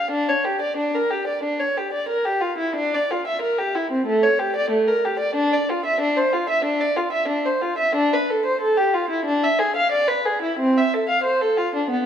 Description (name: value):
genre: classical, baroque-style suite movement for unaccompanied violin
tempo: 92 BPM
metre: 4/4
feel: rubato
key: D minor, A minor from 8.0 s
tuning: A4 = 440 Hz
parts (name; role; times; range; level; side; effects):
- dark violin; solo; 0.0-12.1 s; A3 to F5; -19 LUFS; equal; none
room: moderate concert hall reverb, RT60 1.8 s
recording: dark, warm production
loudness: -19 LUFS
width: side -9 dB against mid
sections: 0.0-12.1 A section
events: none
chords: none